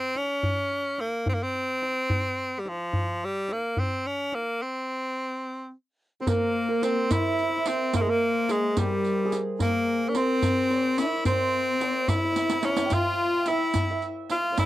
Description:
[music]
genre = Persian modal ensemble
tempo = 72 BPM (dotted quarters)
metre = 6/8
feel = straight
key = C dastgah homayun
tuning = A4 = 437 Hz
[part]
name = edgy tenor saxophone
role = melody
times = 0.0-14.7 s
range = F3 to F4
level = -26 LUFS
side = equal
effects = none
[part]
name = tombak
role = percussion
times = 0.2-14.7 s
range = none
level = -30 LUFS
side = equal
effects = none
[part]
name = santur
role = second line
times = 6.2-14.7 s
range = G4 to G5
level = -29 LUFS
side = right 4 dB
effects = none
[part]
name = warm cello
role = second line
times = 6.2-14.7 s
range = G3 to F4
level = -29 LUFS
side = left 5 dB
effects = none
[part]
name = riq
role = percussion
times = 6.3-14.7 s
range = none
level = -34 LUFS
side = right 7 dB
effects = none
[sound]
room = light reverb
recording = dry, close 1970s-style studio recording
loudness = -24 LUFS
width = side -14 dB against mid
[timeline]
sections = 0.0-6.3 A section; 6.3-14.7 B section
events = break 4.6-6.3; drum fill 12.4-12.9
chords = none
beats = 0.44 | 1.27 2.11 | 2.94 3.77 | 4.61 5.44 | 6.27 7.11 | 7.94 8.77 | 9.60 10.43 | 11.26 12.09 | 12.92 13.76 | 14.59

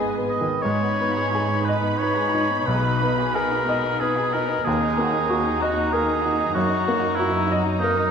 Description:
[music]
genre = classical, romantic movement for piano and orchestra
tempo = 85-98 BPM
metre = 3/4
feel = rubato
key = G# minor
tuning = A4 = 440 Hz
[part]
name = clear baby grand piano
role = melody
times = 0.0-8.1 s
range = B1 to D#5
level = -24 LUFS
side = left 1 dB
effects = none
[part]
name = muted studio violin section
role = melody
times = 0.0-8.1 s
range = G#5 to B5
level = -33 LUFS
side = left 4 dB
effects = none
[part]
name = muted studio violin section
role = second line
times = 0.0-8.1 s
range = G#3 to D#5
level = -31 LUFS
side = left 2 dB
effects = none
[part]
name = muted studio viola section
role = accompaniment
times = 0.0-8.1 s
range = B3 to D#4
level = -31 LUFS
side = right 1 dB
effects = none
[part]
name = muted studio cello section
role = bass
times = 0.0-8.1 s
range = D#2 to B2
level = -29 LUFS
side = right 3 dB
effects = none
[part]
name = warm oboe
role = second line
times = 0.3-8.1 s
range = D#4 to D#5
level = -24 LUFS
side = right 1 dB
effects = none
[sound]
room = wet scoring stage reverb, RT60 1.9 s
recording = minimal, uncompressed stereo recording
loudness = -20 LUFS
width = side -6 dB against mid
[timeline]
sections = 0.6-8.1 A section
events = none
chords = 0.0 G#m; 2.7 G#m/B; 4.7 D#m; 6.5 D#m/F#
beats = | 0.63 1.33 2.00 | 2.68 3.35 4.01 | 4.67 5.31 5.94 | 6.55 7.17 7.81

